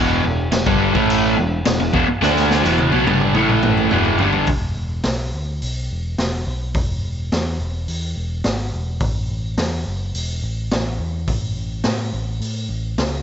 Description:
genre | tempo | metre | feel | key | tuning
garage rock duo or trio | 106 BPM | 4/4 | straight | E mixolydian from 4.5 s | A4 = 440 Hz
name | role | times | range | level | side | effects
raw garage guitar | riff | 0.0-4.5 s | E2 to D4 | -16 LUFS | equal | overdrive, spring reverb
picked electric bass | bass | 0.0-13.2 s | E1 to A2 | -24 LUFS | equal | none
raw garage drum kit | drums | 0.5-13.1 s | crash cymbal, hi-hat, kick drum, snare drum, toms | -22 LUFS | equal | none
room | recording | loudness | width
little or no reverb | nothing above 7.9 kHz | -17 LUFS | side -8 dB against mid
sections
0.0-4.5 A section; 4.5-13.2 B section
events
drum fill 2.2-4.5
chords
0.0 E5; 3.4 A5; 3.9 E5; 9.0 A5

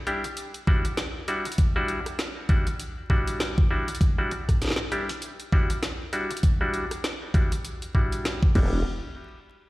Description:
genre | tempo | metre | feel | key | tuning
glitch hop | 99 BPM | 4/4 | swing 58% on 16ths | E minor | A4 = 441 Hz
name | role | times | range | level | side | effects
bright clav | stabs | 0.1-8.8 s | G3 to G4 | -30 LUFS | equal | sidechain pumping, low-pass filter, digital delay
drum and bass drum kit | drums | 0.1-8.7 s | crash cymbal, hi-hat, rim click, snare drum | -32 LUFS | equal | overdrive
electronic kick drum | drums | 0.7-8.7 s | none | -21 LUFS | equal | none
formant-sweep wobble bass | bass | 8.6-8.8 s | E1 | -24 LUFS | equal | chorus, tube saturation
room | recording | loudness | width
light reverb, digital ambience | played on a big sound system in a bare room, large studio reverb, vinyl crackle | -23 LUFS | side -19 dB against mid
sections
0.0-8.9 A section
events
filter sweep on clav 0.0-8.9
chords
0.0 Em9; 8.9 N.C.

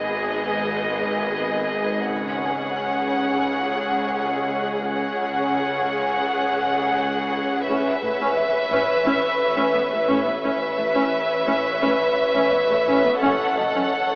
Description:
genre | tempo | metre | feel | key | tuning
cinematic, suspense film score | 86 BPM | 4/4 | straight | unclear | A4 = 440 Hz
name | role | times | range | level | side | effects
warm chamber violin section | melody | 0.0-14.2 s | D#5 to F#5 | -25 LUFS | equal | none
warm chamber violin section | second line | 0.0-14.2 s | G#4 to B4 | -25 LUFS | equal | none
dark studio viola section | accompaniment | 0.0-13.9 s | F#3 to C#4 | -27 LUFS | equal | none
flickering grainy texture | sustained chords | 0.0-14.2 s | G#4 to F#5 | -26 LUFS | equal | built-in reverb
dark chamber cello section | bass | 0.0-13.8 s | F#2 to C#3 | -33 LUFS | equal | none
dark chamber double bass section | bass | 0.0-13.7 s | F#1 to C#2 | -40 LUFS | equal | none
bowed-like drone | drone | 0.0-14.2 s | F#1 to C#2 | -31 LUFS | equal | built-in reverb
felt-muted upright piano | texture | 0.0-14.2 s | D#5 to G#5 | -30 LUFS | equal | none
room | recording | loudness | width
wet scoring stage reverb, RT60 2.0 s | AM radio sound | -19 LUFS | side -34 dB against mid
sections
0.0-14.2 A section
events
none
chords
0.0 G#m; 2.1 C#sus4; 7.7 Aadd9; 13.2 F#m

